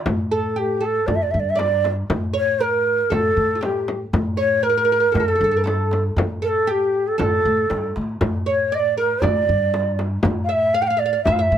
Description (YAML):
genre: Arabic maqam ensemble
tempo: 118 BPM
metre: 4/4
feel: straight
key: A maqam hijaz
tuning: A4 = 440 Hz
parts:
  - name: upright bass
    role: bass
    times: 0.1-11.6 s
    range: G2 to A2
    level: -26 LUFS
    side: equal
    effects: none
  - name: darbuka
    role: percussion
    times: 0.1-11.4 s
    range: none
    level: -28 LUFS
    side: equal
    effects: none
  - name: frame drum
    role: percussion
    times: 0.1-11.4 s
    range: none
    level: -25 LUFS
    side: left 2 dB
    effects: none
  - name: breathy ney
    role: melody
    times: 0.3-11.6 s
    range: G4 to G5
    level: -19 LUFS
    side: right 1 dB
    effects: none
  - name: oud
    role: second line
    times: 0.3-11.6 s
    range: F4 to F5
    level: -26 LUFS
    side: right 4 dB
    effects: none
room: light reverb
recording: none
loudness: -17 LUFS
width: side -9 dB against mid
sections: 0.1-11.6 A section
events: none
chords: none